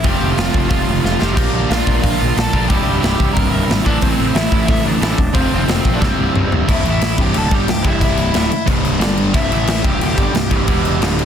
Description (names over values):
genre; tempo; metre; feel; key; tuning
punk rock; 180 BPM; 4/4; straight; C mixolydian, C major from 6.7 s; A4 = 440 Hz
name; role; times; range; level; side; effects
overdriven semi-hollow guitar; melody; 0.0-11.2 s; C4 to Bb5; -22 LUFS; equal; ping-pong delay
sludgy distorted guitar; riff; 0.0-11.2 s; C2 to Bb4; -18 LUFS; equal; overdrive
big rock drum kit; drums; 0.0-11.2 s; crash cymbal, hi-hat, kick drum, snare drum, toms; -18 LUFS; equal; none
fuzz picked electric bass; bass; 0.1-11.2 s; C1 to Bb1; -20 LUFS; equal; overdrive
room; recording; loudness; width
little or no reverb; dense, heavily limited modern master; -13 LUFS; side -8 dB against mid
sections
0.0-6.7 A section; 6.7-11.2 B section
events
drum fill 1.0-1.4, 6.0-6.7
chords
0.0 F; 1.4 Bb; 2.7 C; 3.9 Am; 5.3 F; 6.0 C; 6.8 A5; 7.2 C; 9.0 G5; 9.3 C; 9.5 A5; 9.8 C5; 10.7 E5